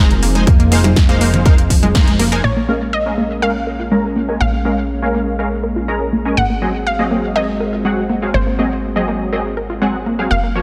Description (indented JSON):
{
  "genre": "progressive house",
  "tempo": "122 BPM",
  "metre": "4/4",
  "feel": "straight",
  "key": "Bb minor",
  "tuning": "A4 = 441 Hz",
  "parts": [
    { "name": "lush unison pad", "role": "sustained chords", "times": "0.0-10.6 s", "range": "F3 to Bb4", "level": "-26 LUFS", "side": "equal", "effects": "chorus, sidechain pumping" },
    { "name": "unison pluck", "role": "arpeggios", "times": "0.0-10.6 s", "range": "F3 to Bb4", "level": "-23 LUFS", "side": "equal", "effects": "sidechain pumping, dub echo" },
    { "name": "supersaw stab", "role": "stabs", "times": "0.0-10.6 s", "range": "F3 to Bb5", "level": "-23 LUFS", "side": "equal", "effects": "ensemble chorus, sidechain pumping, low-pass filter, dub echo" },
    { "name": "plucky analog bass", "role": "bass", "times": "0.0-10.6 s", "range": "F1 to Bb1", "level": "-23 LUFS", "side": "equal", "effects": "sidechain pumping" },
    { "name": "deep house drum kit", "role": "drums", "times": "0.1-2.4 s", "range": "finger snaps, hi-hat, snare drum", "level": "-24 LUFS", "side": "equal", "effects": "overdrive, sidechain pumping on hats" },
    { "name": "congas and bongos", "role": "percussion", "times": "0.1-2.3 s", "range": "none", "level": "-24 LUFS", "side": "equal", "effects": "sidechain pumping on perc" },
    { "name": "electronic kick drum", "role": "drums", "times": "0.5-2.0 s", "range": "none", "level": "-14 LUFS", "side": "equal", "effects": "none" },
    { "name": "unison pluck", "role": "melody", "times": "2.4-10.6 s", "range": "C5 to Gb5", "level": "-24 LUFS", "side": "equal", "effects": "dub echo" }
  ],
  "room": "light reverb",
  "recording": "none",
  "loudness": "-16 LUFS",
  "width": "mono",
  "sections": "0.0-2.4 A section; 2.4-10.6 B section",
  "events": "band accent 1.9; filter sweep on supersaw synth 2.4-10.6",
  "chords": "0.0 Fm7; 2.4 Bbm7; 6.4 Ab7"
}